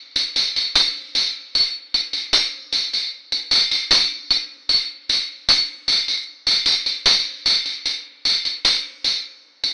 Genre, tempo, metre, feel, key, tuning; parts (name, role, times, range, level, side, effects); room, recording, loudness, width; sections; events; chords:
indie pop; 76 BPM; 4/4; straight
tambourine; percussion; 0.2-9.7 s; -18 LUFS; equal
light reverb, small room ambience; AM radio sound; -18 LUFS; mono
0.0-9.7 A section